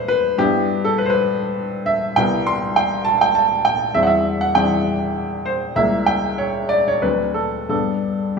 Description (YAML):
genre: classical, romantic character piece for solo piano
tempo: 87-103 BPM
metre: 3/4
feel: rubato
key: unclear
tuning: A4 = 440 Hz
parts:
  - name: bright baby grand piano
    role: solo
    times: 0.0-8.4 s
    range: C2 to C6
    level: -16 LUFS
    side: equal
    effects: none
room: wet scoring stage reverb, RT60 1.8 s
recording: none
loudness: -16 LUFS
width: side -5 dB against mid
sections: 0.0-8.4 A section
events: none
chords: 0.4 Em/G; 2.2 Cmaj7; 4.0 C/E; 5.8 C#dim7; 7.0 D7; 7.7 G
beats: | 0.40 1.00 1.59 | 2.17 2.77 3.36 | 3.96 4.57 5.18 | 5.78 6.39 7.03 | 7.71 8.39